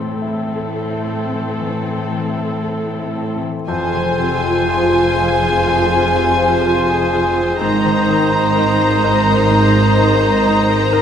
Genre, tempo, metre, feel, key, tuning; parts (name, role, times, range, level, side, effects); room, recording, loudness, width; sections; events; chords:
cinematic, emotional film score for orchestra; 56-64 BPM; 4/4; rubato; F minor; A4 = 440 Hz
clear grand piano; accompaniment; 0.0-11.0 s; F2 to Bb4; -24 LUFS; left 1 dB
rich symphonic viola section; accompaniment; 0.0-11.0 s; C4 to A4; -23 LUFS; right 2 dB
concert harp; arpeggios; 0.0-11.0 s; F2 to Bb5; -24 LUFS; left 8 dB
rich studio cello section; bass; 0.0-11.0 s; F2 to A2; -22 LUFS; right 4 dB
rich studio violin section; melody; 3.7-11.0 s; Ab5 to Bb5; -21 LUFS; left 1 dB
dark clarinet; second line; 3.7-11.0 s; Eb4 to F4; -25 LUFS; right 2 dB
rich studio violin section; second line; 3.7-11.0 s; C5; -23 LUFS; left 4 dB
silver concert flute; second line; 3.7-11.0 s; Ab5 to Bb5; -22 LUFS; left 2 dB
warm cor anglais; second line; 3.7-11.0 s; C5; -22 LUFS; right 1 dB
mellow French horn section; sustained chords; 3.7-11.0 s; C4 to Bb4; -23 LUFS; left 4 dB
rich symphonic double bass section; bass; 3.7-11.0 s; F1 to Ab1; -22 LUFS; right 4 dB
moderate scoring stage reverb, RT60 1.6 s; -13 LUFS; side -8 dB against mid
0.0-3.7 A section; 3.7-11.0 A section
0.0 Am; 3.7 Fm; 7.6 Abadd9